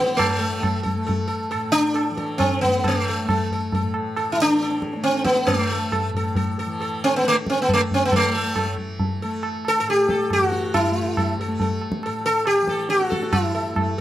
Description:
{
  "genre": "indian classical, Hindustani",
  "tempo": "137 BPM",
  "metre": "3/4",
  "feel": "straight",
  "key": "A raga kafi",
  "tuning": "A4 = 440 Hz",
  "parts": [
    { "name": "sitar", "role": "melody", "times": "0.0-14.0 s", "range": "A3 to A4", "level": "-21 LUFS", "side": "equal", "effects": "none" },
    { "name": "tanpura", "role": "drone", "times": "0.0-14.0 s", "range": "A2 to A3", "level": "-30 LUFS", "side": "left 1 dB", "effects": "none" },
    { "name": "tabla", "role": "percussion", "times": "0.1-14.0 s", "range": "none", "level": "-25 LUFS", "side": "equal", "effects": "none" }
  ],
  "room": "light reverb",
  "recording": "none",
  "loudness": "-19 LUFS",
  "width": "side -13 dB against mid",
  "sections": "0.0-8.1 A section; 8.1-14.0 B section",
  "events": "speeding up 0.0-14.0",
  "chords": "none"
}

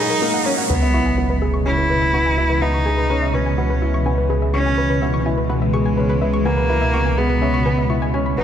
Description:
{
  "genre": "piano and strings electronica",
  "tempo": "125 BPM",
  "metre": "4/4",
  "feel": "straight",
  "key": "C# dorian",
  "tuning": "A4 = 440 Hz",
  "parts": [
    { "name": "rich cello", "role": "melody", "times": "0.0-8.4 s", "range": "G#3 to E4", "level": "-21 LUFS", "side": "equal", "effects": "digital delay" },
    { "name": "granular cloud pad", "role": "sustained chords", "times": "0.0-8.4 s", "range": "A#2 to D#5", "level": "-24 LUFS", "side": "equal", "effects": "built-in reverb" },
    { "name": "soft round pluck", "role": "arpeggios", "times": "0.0-8.4 s", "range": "A#4 to C#6", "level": "-27 LUFS", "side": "left 3 dB", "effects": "chorus, digital delay" },
    { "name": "dark upright piano", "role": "riff", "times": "0.0-8.4 s", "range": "A#3 to C#5", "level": "-24 LUFS", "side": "equal", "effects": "digital delay" },
    { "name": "riser and sub drop", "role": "sound effects", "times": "0.0-2.6 s", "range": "none", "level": "-24 LUFS", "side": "right 1 dB", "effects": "none" },
    { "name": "dark detuned saw bass", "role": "bass", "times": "0.7-8.4 s", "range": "G#1 to C#2", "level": "-21 LUFS", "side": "equal", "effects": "none" }
  ],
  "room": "moderate lush hall reverb, RT60 2.2 s",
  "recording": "none",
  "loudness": "-16 LUFS",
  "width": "side -9 dB against mid",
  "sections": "0.7-8.4 A section",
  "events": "riser 0.0-0.7; drop 0.7-8.4; impact 0.7-2.6",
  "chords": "0.0 F#add9; 0.7 C#m7"
}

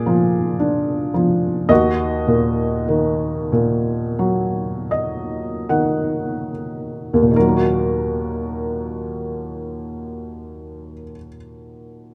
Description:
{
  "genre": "classical, lyrical solo piano",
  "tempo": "36-57 BPM",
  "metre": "4/4",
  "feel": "rubato",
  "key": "Eb minor",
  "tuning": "A4 = 440 Hz",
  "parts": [
    { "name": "felt-muted upright piano", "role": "solo", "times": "0.0-12.1 s", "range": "Eb2 to Gb5", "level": "-20 LUFS", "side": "equal", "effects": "none" }
  ],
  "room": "light reverb",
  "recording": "close, detailed microphones",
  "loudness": "-20 LUFS",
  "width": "mono",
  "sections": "0.0-7.4 A section; 7.4-12.1 B section",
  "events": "slowing down 0.0-7.4; felt piano fill 4.2-7.4",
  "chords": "0.0 Bb7; 1.7 Ebm"
}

